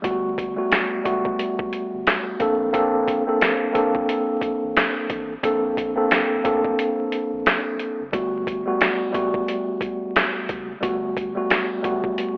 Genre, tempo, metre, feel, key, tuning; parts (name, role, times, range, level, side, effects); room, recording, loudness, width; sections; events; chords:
hip hop, boom-bap hip-hop; 89 BPM; 4/4; swing 60% on 16ths; A4 = 440 Hz
mellow tine electric piano; accompaniment; 0.0-12.4 s; G3 to A4; -24 LUFS; equal; cassette tape, high-pass filter, low-pass filter
warm sub bass; bass; 0.0-12.1 s; D1 to D2; -47 LUFS; equal
boom bap sampler-style drum kit; drums; 0.0-12.4 s; hi-hat, kick drum, snare drum; -25 LUFS; equal
moderate plate reverb, RT60 2.1 s; dreamy mix soaked in reverb, vinyl crackle, telephone sound; -23 LUFS; mono
0.0-12.4 A section
break 6.8-8.1
0.0 Gmaj9; 2.4 Bbmaj9; 8.1 Gmaj9